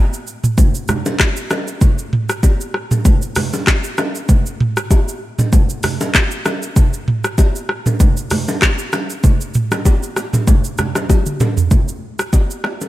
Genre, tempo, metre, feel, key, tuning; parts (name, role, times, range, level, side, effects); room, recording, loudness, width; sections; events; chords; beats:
afrobeats; 97 BPM; 4/4; swing 55% on 16ths
afro-pop drum kit; drums; 0.1-12.9 s; handclaps, hi-hat, kick drum, rim click, shaker, toms; -14 LUFS; equal
congas and bongos; percussion; 0.6-12.9 s; -21 LUFS; right 2 dB
little or no reverb; -14 LUFS; side -15 dB against mid
0.0-11.7 A section; 11.7-12.9 B section
drum fill 11.1-11.7
0.58 1.20 | 1.81 2.43 3.05 3.67 | 4.29 4.91 5.53 6.14 | 6.76 7.38 8.00 8.62 | 9.24 9.86 10.47 11.09 | 11.71 12.33